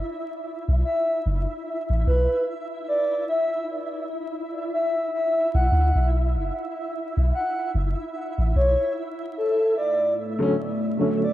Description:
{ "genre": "trip hop", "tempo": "74 BPM", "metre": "4/4", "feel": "swing 57% on 16ths", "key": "B minor", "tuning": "A4 = 440 Hz", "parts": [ { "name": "flickering grainy texture", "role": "texture", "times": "0.0-11.3 s", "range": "E4 to E5", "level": "-32 LUFS", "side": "right 1 dB", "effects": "built-in reverb" }, { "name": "soft 808-style bass", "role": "bass", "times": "0.7-8.8 s", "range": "F#1 to D2", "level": "-20 LUFS", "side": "equal", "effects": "none" }, { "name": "pure breathy sine lead", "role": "melody", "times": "0.9-11.3 s", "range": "A4 to F#5", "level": "-25 LUFS", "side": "equal", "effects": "chorus, tape echo" }, { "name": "deep dark ambient pad", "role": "sustained chords", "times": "10.0-11.3 s", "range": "A3 to B4", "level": "-28 LUFS", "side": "right 2 dB", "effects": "chorus, built-in reverb" }, { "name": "dark upright piano", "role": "accompaniment", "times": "10.4-11.3 s", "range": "D3 to C#4", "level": "-22 LUFS", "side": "left 1 dB", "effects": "tremolo" } ], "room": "light reverb", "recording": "worn, warbling old tape, cassette tape, vinyl crackle, warbly pitch drift", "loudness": "-22 LUFS", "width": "side -14 dB against mid", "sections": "0.0-11.3 A section", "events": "none", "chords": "0.0 N.C.; 9.8 Bm9", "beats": "| 0.04 0.85 1.66 2.47 | 3.28 4.09 4.90 5.71 | 6.52 7.33 8.14 8.96 | 9.77 10.58" }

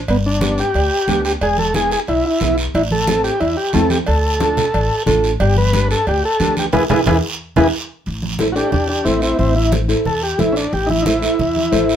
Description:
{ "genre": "latin, cumbia", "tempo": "180 BPM", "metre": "4/4", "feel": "straight", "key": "A minor", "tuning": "A4 = 438 Hz", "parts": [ { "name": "overdriven combo organ", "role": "melody", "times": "0.1-12.0 s", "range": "B3 to B4", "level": "-17 LUFS", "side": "equal", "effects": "none" }, { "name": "upright bass", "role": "bass", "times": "0.1-12.0 s", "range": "E1 to E2", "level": "-20 LUFS", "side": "left 1 dB", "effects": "none" }, { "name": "congas", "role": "percussion", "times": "0.1-11.9 s", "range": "none", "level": "-23 LUFS", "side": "right 3 dB", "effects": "none" }, { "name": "cowbell and timbales", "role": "percussion", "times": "0.1-7.6 s", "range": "none", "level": "-24 LUFS", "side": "right 5 dB", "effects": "none" }, { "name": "guiro", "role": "percussion", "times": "0.1-12.0 s", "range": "none", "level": "-27 LUFS", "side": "right 4 dB", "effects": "none" }, { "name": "nylon-string guitar", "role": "accompaniment", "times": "0.4-12.0 s", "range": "B3 to C5", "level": "-19 LUFS", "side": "equal", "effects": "none" } ], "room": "moderate studio reverb, RT60 0.5 s", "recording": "band playing live in one room", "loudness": "-14 LUFS", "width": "side -9 dB against mid", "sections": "0.0-8.1 A section; 8.1-12.0 B section", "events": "band accent 6.7-8.1; drum fill 7.1-8.1; transistor combo organ solo 8.1-12.0", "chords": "0.1 G; 1.4 E; 2.7 Am; 4.1 Dm; 5.4 G; 6.7 E; 8.1 Am", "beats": "| 0.08 0.41 0.75 1.08 | 1.41 1.74 2.08 2.41 | 2.74 3.08 3.41 3.74 | 4.07 4.41 4.74 5.07 | 5.40 5.74 6.07 6.40 | 6.74 7.07 7.40 7.73 | 8.06 8.40 8.73 9.06 | 9.40 9.73 10.06 10.39 | 10.73 11.06 11.39 11.72" }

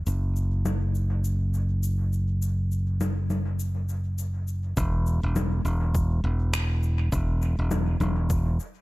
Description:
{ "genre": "ambient dub", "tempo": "102 BPM", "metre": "4/4", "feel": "swing 59% on 16ths", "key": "unclear", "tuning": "A4 = 437 Hz", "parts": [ { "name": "modern bright fingered electric bass", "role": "bass", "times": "0.0-8.6 s", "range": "E1 to F#1", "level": "-24 LUFS", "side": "equal", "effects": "none" }, { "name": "electronic shaker, congas and finger snaps", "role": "drums", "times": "0.1-8.7 s", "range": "none", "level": "-33 LUFS", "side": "left 2 dB", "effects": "overdrive, dub echo" }, { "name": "electronic kick drum", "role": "drums", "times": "4.8-8.4 s", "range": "none", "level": "-29 LUFS", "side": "equal", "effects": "overdrive" } ], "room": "little or no reverb", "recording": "none", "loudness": "-24 LUFS", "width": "side -20 dB against mid", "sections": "0.0-4.8 A section; 4.8-8.8 B section", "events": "none", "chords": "none", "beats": "| 0.07 0.65 1.24 1.83 | 2.42 3.01 3.59 4.18 | 4.77 5.36 5.95 6.54 | 7.12 7.71 8.30" }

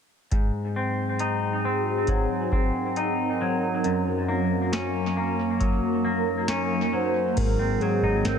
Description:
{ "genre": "dream pop", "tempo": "68 BPM", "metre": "4/4", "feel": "straight", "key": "Ab mixolydian", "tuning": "A4 = 436 Hz", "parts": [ { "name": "shimmering ambient pad", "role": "sustained chords", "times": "0.9-8.4 s", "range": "Eb3 to Bb4", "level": "-27 LUFS", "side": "right 1 dB", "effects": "chorus, built-in reverb, phaser" }, { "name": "clean electric guitar", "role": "arpeggios", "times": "0.3-8.4 s", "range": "Gb2 to Eb4", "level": "-26 LUFS", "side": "left 1 dB", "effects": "wide subtle chorus, tape echo" }, { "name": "booming analog drum machine", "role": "drums", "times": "0.3-8.4 s", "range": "crash cymbal, hi-hat, kick drum, snare drum", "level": "-26 LUFS", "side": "equal", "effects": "tape echo" }, { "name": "hollow clarinet-like synth lead", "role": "melody", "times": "6.9-8.4 s", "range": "Ab4 to C5", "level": "-26 LUFS", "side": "equal", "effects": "chorus, tape echo" }, { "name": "vintage muted picked electric bass", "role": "bass", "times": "7.4-8.4 s", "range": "Ab1", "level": "-27 LUFS", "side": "equal", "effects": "none" } ], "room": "light reverb", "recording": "echo-heavy mix", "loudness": "-22 LUFS", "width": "side -7 dB against mid", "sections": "0.3-7.4 A section; 7.4-8.4 B section", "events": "none", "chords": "0.3 Ab7; 3.8 Gb; 7.4 Ab7", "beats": "| 0.31 1.19 2.08 2.96 | 3.84 4.72 5.61 6.49 | 7.37 8.25" }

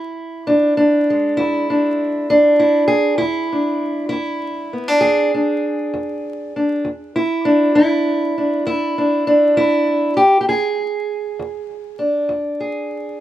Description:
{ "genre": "acoustic country blues, solo or duo", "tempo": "66 BPM (dotted quarters)", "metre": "12/8", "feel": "straight", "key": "E mixolydian", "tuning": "A4 = 440 Hz", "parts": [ { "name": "fingerpicked steel-string acoustic guitar", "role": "solo", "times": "0.0-13.2 s", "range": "E2 to G#4", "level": "-15 LUFS", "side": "equal", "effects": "none" } ], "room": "little or no reverb", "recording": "recorded outdoors, with no room sound, vinyl crackle", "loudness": "-15 LUFS", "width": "side -13 dB against mid", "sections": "0.0-13.2 A section", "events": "none", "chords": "0.0 E7", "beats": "0.49 1.40 2.31 | 3.21 4.12 5.03 5.94 | 6.85 7.76 8.67 9.57 | 10.48 11.39 12.30" }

